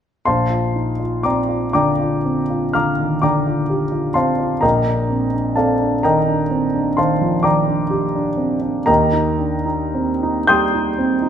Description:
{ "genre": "classical, impressionist solo piano", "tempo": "36-44 BPM (dotted quarters)", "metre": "9/8", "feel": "rubato", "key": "Bb major", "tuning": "A4 = 440 Hz", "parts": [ { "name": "warm grand piano", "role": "solo", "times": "0.3-11.3 s", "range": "Bb1 to G6", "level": "-16 LUFS", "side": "equal", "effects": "none" } ], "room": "moderate recital hall reverb, RT60 1.7 s", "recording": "minimal, uncompressed stereo recording", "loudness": "-16 LUFS", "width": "side -8 dB against mid", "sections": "0.3-11.3 A section", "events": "none", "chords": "0.3 Bb69; 8.9 Eb6", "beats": "| 0.27 1.75 3.23 | 4.64 6.05 7.46 | 8.89 10.49" }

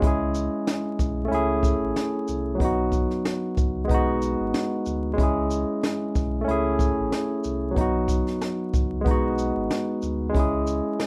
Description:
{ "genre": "hip hop, boom-bap hip-hop", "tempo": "93 BPM", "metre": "4/4", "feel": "swing 56% on 16ths", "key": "C# minor", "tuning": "A4 = 440 Hz", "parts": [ { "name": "barky tine electric piano", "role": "accompaniment", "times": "0.0-11.1 s", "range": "F#3 to G#4", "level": "-26 LUFS", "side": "equal", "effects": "overdrive, cassette tape, high-pass filter, low-pass filter" }, { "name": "sub bass with octave", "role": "bass", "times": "0.0-10.8 s", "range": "G#1 to D2", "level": "-33 LUFS", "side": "equal", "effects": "none" }, { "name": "jazz brush drum kit", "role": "drums", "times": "0.0-11.1 s", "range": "hi-hat, kick drum, shaker, snare drum", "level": "-29 LUFS", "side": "equal", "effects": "none" } ], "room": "little or no reverb", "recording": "rough home demo mix, vinyl crackle", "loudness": "-25 LUFS", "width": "mono", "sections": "0.0-11.1 A section", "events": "none", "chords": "0.0 C#m; 1.3 Amaj7; 2.6 B; 3.9 G#m7; 5.2 C#m; 6.5 Amaj7; 7.8 B; 9.1 G#m7; 10.3 C#m", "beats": "| 0.02 0.67 1.31 1.96 | 2.60 3.25 3.89 4.54 | 5.18 5.83 6.47 7.12 | 7.76 8.41 9.05 9.70 | 10.34 10.99" }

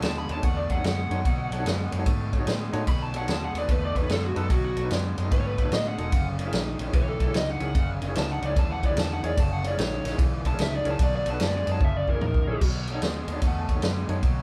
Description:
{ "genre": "electric blues shuffle", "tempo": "148 BPM", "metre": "4/4", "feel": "swing 66% on 8ths", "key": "B mixolydian", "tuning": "A4 = 440 Hz", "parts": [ { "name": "lead guitar through a small cranked amp", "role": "melody", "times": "0.0-12.6 s", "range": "F#4 to B5", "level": "-33 LUFS", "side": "equal", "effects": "overdrive" }, { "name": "clear grand piano", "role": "accompaniment", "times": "0.0-14.4 s", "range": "D#4 to A5", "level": "-38 LUFS", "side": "equal", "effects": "none" }, { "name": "overdriven semi-hollow guitar", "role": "riff", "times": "0.0-14.4 s", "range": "F#2 to A3", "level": "-36 LUFS", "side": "equal", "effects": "none" }, { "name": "vintage muted fingered electric bass", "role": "bass", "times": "0.0-14.4 s", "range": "E1 to A2", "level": "-33 LUFS", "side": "equal", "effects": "none" }, { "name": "vintage drum kit", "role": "drums", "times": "0.0-14.3 s", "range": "crash cymbal, kick drum, ride cymbal, snare drum, toms", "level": "-28 LUFS", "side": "equal", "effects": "none" } ], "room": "light reverb", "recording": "band playing live in one room", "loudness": "-26 LUFS", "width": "mono", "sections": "0.0-12.6 A section; 12.6-14.4 A section", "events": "lead electric guitar solo 0.0-12.6; drum fill 11.8-12.6", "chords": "0.0 B9; 6.1 F#9; 11.0 B7; 11.8 F#9; 12.6 B9", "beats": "0.03 0.43 0.84 | 1.25 1.65 2.06 2.47 | 2.87 3.28 3.69 4.09 | 4.50 4.91 5.31 5.72 | 6.13 6.53 6.94 7.34 | 7.75 8.15 8.56 8.97 | 9.37 9.78 10.18 10.59 | 10.99 11.39 11.80 12.20 | 12.61 13.01 13.42 13.82 | 14.22" }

